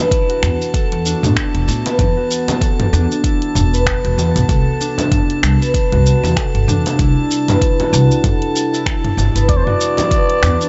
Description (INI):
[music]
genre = organic downtempo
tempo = 96 BPM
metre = 4/4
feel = swing 58% on 16ths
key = E minor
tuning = A4 = 441 Hz
[part]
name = warbly tape-like pad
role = sustained chords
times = 0.0-10.7 s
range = C3 to F#4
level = -26 LUFS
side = equal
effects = chorus, built-in reverb, sidechain pumping
[part]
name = concert harp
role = arpeggios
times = 0.0-10.7 s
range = B3 to B4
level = -22 LUFS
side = equal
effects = vintage 12-bit sampler grit, digital delay
[part]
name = drifting glass-harmonics texture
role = texture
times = 0.0-10.7 s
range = A5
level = -31 LUFS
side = equal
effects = chorus, built-in reverb
[part]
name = deep house drum kit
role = drums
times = 0.1-10.7 s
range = finger snaps, hi-hat, shaker, toms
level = -23 LUFS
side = equal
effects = none
[part]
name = electronic kick drum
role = drums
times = 0.1-10.3 s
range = none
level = -20 LUFS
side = equal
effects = none
[part]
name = upright bass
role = bass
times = 0.4-10.6 s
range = E1 to A2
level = -18 LUFS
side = equal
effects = tube saturation, sidechain pumping
[part]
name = congas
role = percussion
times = 1.2-10.1 s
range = none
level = -27 LUFS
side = equal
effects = none
[part]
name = trumpet with cup mute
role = melody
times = 9.5-10.7 s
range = C5 to D5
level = -20 LUFS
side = equal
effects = none
[sound]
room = digital ambience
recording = nothing above 7.8 kHz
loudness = -15 LUFS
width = mono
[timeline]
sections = 0.0-10.7 A section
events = none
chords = 0.0 E5; 4.5 Cmaj7; 9.5 E5